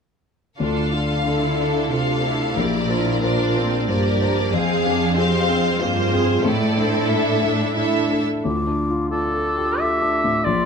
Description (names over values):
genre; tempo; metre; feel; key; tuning
cinematic; 91 BPM; 3/4; rubato; D minor; A4 = 440 Hz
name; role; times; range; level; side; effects
rich symphonic violin section; second line; 0.6-8.2 s; Ab4 to F5; -24 LUFS; left 2 dB; none
rich symphonic viola section; accompaniment; 0.6-8.2 s; A3 to Ab4; -24 LUFS; right 3 dB; none
warm grand piano; accompaniment; 0.6-10.7 s; Bb1 to C5; -23 LUFS; left 2 dB; none
dark symphonic cello section; bass; 0.6-8.2 s; F2 to D3; -24 LUFS; right 3 dB; none
clear clarinet; second line; 8.4-10.7 s; F4; -28 LUFS; right 1 dB; none
mellow hollow concert flute; second line; 8.4-10.7 s; C6 to D6; -25 LUFS; left 4 dB; none
warm oboe; second line; 9.1-10.7 s; A4 to E5; -22 LUFS; right 1 dB; none
room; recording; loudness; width
light reverb; close, detailed microphones; -18 LUFS; side -6 dB against mid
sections
0.6-8.4 A section; 8.4-10.7 B section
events
none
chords
0.6 Dm; 2.6 Bbadd9; 4.5 Fm; 6.4 Asus4; 8.4 Dm